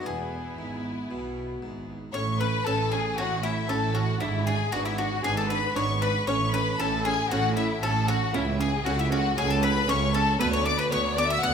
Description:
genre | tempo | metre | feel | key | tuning
classical, baroque-style concerto movement with solo episodes | 116 BPM | 4/4 | straight | A major | A4 = 440 Hz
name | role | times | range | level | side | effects
bowl-back mandolin | melody | 0.0-11.5 s | E4 to F#5 | -31 LUFS | left 1 dB | none
rich chamber violin section | melody | 0.0-11.5 s | E5 to F#6 | -31 LUFS | left 6 dB | none
rich chamber violin section | second line | 0.0-11.5 s | E4 to F#5 | -31 LUFS | left 4 dB | none
harpsichord | accompaniment | 0.0-11.5 s | C#2 to E4 | -36 LUFS | left 2 dB | none
rich studio viola section | accompaniment | 0.0-11.5 s | B3 to D4 | -34 LUFS | right 3 dB | none
rich chamber double bass section | bass | 0.0-11.5 s | E1 to D2 | -31 LUFS | right 3 dB | none
warm chamber cello section | bass | 0.0-11.5 s | C#2 to B2 | -31 LUFS | right 4 dB | none
room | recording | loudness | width
wet recital hall reverb, RT60 1.8 s | minimal, uncompressed stereo recording | -23 LUFS | side -7 dB against mid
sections
0.0-2.1 A section; 2.1-11.5 B section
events
none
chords
0.1 E; 2.1 A; 4.2 E7/G#; 6.3 A; 8.3 A/C#; 10.4 Bm/D

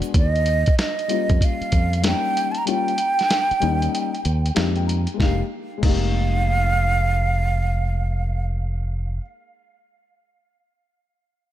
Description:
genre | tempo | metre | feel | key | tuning
hip hop, jazz-hop | 95 BPM | 4/4 | swing 65% on 16ths | F minor | A4 = 440 Hz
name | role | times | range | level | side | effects
dark concert grand piano | accompaniment | 0.0-9.2 s | G3 to Bb5 | -27 LUFS | left 10 dB | none
lo-fi sampler-style drum kit | drums | 0.0-6.0 s | crash cymbal, hi-hat, kick drum, snare drum | -22 LUFS | equal | none
fingered electric bass | bass | 0.1-9.2 s | F1 to F2 | -21 LUFS | equal | none
breathy concert flute | melody | 0.2-8.5 s | Eb5 to Bb5 | -24 LUFS | right 3 dB | tape echo
room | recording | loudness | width
small room ambience | none | -19 LUFS | side -12 dB against mid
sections
0.0-5.2 A section; 5.2-7.7 B section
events
kick muted 2.7-5.2; grand piano fill 4.2-5.2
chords
0.1 Eb9; 4.6 Fm11

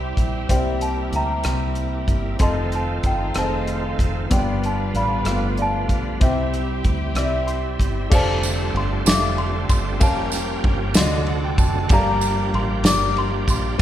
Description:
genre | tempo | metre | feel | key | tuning
slow gospel | 63 BPM (dotted quarters) | 6/8 | straight | F major | A4 = 435 Hz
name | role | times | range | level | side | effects
small celesta | melody | 0.0-13.8 s | B4 to D6 | -26 LUFS | equal | none
clear concert grand piano | accompaniment | 0.0-13.8 s | G2 to C6 | -26 LUFS | left 3 dB | none
bright tonewheel organ | sustained chords | 0.0-13.8 s | C3 to G4 | -28 LUFS | right 4 dB | slow rotary speaker, chorus vibrato
warm studio string section | sustained chords | 0.0-8.1 s | G3 to G4 | -33 LUFS | equal | none
deep dub fingered electric bass | bass | 0.0-13.8 s | F1 to D2 | -25 LUFS | equal | none
warm soul drum kit | drums | 0.2-13.8 s | crash cymbal, hi-hat, kick drum, ride cymbal, rim click, snare drum | -20 LUFS | equal | none
tambourine | percussion | 8.1-13.8 s | none | -31 LUFS | right 6 dB | none
room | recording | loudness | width
moderate scoring stage reverb, RT60 1.7 s | recorded in a church or concert hall | -18 LUFS | side -12 dB against mid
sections
0.0-8.1 A section; 8.1-13.8 B section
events
grand piano fill 7.2-8.1, 11.0-11.9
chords
0.0 C; 2.4 F7; 4.3 G7; 6.2 C; 8.1 F69; 10.0 Bbm6/F; 11.0 D7b9; 11.9 Gm7

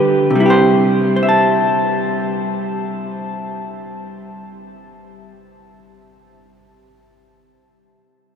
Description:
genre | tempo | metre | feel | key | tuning
solo jazz | free time | none | none | C major | A4 = 440 Hz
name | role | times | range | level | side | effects
vintage hollow-body jazz guitar | solo | 0.0-6.1 s | C3 to A5 | -14 LUFS | equal | none
room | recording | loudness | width
wet huge ambient reverb, RT60 7.8 s | in a vast, echoing space | -14 LUFS | side -7 dB against mid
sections
0.3-4.5 A section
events
none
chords
0.3 C6

